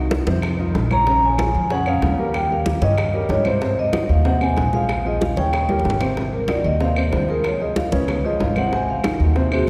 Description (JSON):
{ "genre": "Afro-Cuban jazz", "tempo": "188 BPM", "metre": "4/4", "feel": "straight", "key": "Ab major", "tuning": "A4 = 440 Hz", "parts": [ { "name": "warm grand piano", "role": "accompaniment", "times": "0.0-9.7 s", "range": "C3 to Db5", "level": "-27 LUFS", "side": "equal", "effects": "none" }, { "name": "upright bass", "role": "bass", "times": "0.0-9.7 s", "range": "Ab1 to Ab2", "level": "-24 LUFS", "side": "equal", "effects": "none" }, { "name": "bongos", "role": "percussion", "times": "0.1-9.7 s", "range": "none", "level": "-33 LUFS", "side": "equal", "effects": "none" }, { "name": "congas", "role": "percussion", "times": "0.1-9.7 s", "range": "none", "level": "-29 LUFS", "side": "equal", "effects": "none" }, { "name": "claves", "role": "percussion", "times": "0.4-9.7 s", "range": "none", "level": "-36 LUFS", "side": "equal", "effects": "none" }, { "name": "vibraphone with soft mallets", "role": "melody", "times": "0.9-9.7 s", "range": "C4 to Bb5", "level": "-24 LUFS", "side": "equal", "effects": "none" } ], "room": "wet church reverb, RT60 3.5 s", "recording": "recorded in a church or concert hall", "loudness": "-20 LUFS", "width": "mono", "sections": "0.0-6.2 A section; 6.2-9.7 B section", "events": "drum fill 5.7-6.2; vibraphone solo 6.2-9.7", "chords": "0.4 F5; 1.1 Bbm7; 2.3 Eb13; 3.6 Ab13; 4.9 Bbm7; 5.5 Eb6; 6.2 Ab6; 7.4 Db7; 8.7 Ab13", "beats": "0.11 0.43 0.74 | 1.06 1.38 1.70 2.02 | 2.34 2.66 2.98 3.30 | 3.62 3.94 4.25 4.57 | 4.89 5.21 5.53 5.85 | 6.17 6.49 6.80 7.12 | 7.44 7.76 8.08 8.40 | 8.72 9.04 9.36 9.67" }